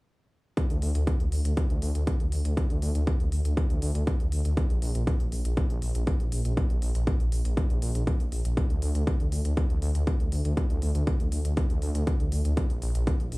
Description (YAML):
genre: melodic techno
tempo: 120 BPM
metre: 4/4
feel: straight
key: unclear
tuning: A4 = 440 Hz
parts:
  - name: electronic hi-hat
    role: drums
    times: 0.6-13.4 s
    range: none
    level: -43 LUFS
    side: left 1 dB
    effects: sidechain pumping on hats
  - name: electronic kick drum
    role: drums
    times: 0.6-13.2 s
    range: none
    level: -26 LUFS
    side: equal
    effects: overdrive
  - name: dark detuned saw bass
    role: bass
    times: 0.7-13.4 s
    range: Bb1 to D2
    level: -27 LUFS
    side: equal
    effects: sidechain pumping
room: little or no reverb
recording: dry, gritty hardware recording, studio ambience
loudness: -24 LUFS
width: side -23 dB against mid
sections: 0.6-13.4 A section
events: none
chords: none